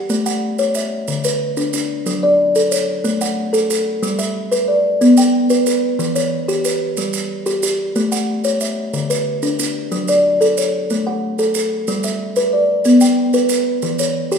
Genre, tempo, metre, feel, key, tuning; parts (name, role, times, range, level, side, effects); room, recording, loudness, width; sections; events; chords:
southern african traditional, mbira-style interlocking cycle; 122 BPM (dotted quarters); 12/8; straight; A mixolydian; A4 = 439 Hz
kalimba; arpeggios; 0.0-14.4 s; D3 to G5; -15 LUFS; left 1 dB
maracas; percussion; 0.1-14.4 s; -25 LUFS; right 7 dB
wet recital hall reverb, RT60 1.5 s; minimal, uncompressed stereo recording; -15 LUFS; side -6 dB against mid
0.1-14.4 A section
0.1 A; 1.1 Bm/D; 2.1 F#m; 3.0 A; 4.0 G; 5.0 Bm; 6.0 Em; 7.0 G; 8.0 A; 8.9 Bm/D; 9.9 F#m; 10.9 A; 11.9 G; 12.9 Bm; 13.8 Em